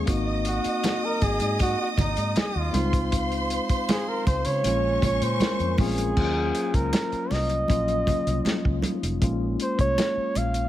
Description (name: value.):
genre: lush 1970s-style soul.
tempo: 79 BPM.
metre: 4/4.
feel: straight.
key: unclear.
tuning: A4 = 436 Hz.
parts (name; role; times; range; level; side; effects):
warm studio violin section; second line; 0.0-6.1 s; Db4 to Eb6; -31 LUFS; right 1 dB; none.
mellow tine electric piano; accompaniment; 0.0-10.7 s; Gb3 to Gb4; -29 LUFS; left 3 dB; medium stereo tremolo.
vintage muted fingered electric bass; bass; 0.0-10.7 s; F1 to Db3; -28 LUFS; equal; none.
vibraphone with medium hard mallets; texture; 0.0-9.6 s; Db4 to F5; -39 LUFS; left 1 dB; stereo widening.
warm soul drum kit; drums; 0.1-10.7 s; crash cymbal, hi-hat, kick drum, snare drum; -26 LUFS; equal; none.
warm flugelhorn; melody; 0.5-10.7 s; Eb4 to F5; -28 LUFS; right 1 dB; tape echo.
congas; percussion; 0.8-10.5 s; none; -34 LUFS; right 4 dB; none.
room: studio ambience.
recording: none.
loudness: -22 LUFS.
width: side -13 dB against mid.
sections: 0.0-6.2 A section; 6.2-10.7 B section.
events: flugelhorn solo 0.0-6.2.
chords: 0.1 Ab7; 2.7 Dbmaj7; 4.6 Bbm7; 6.2 Ebm7; 9.2 Bbm7.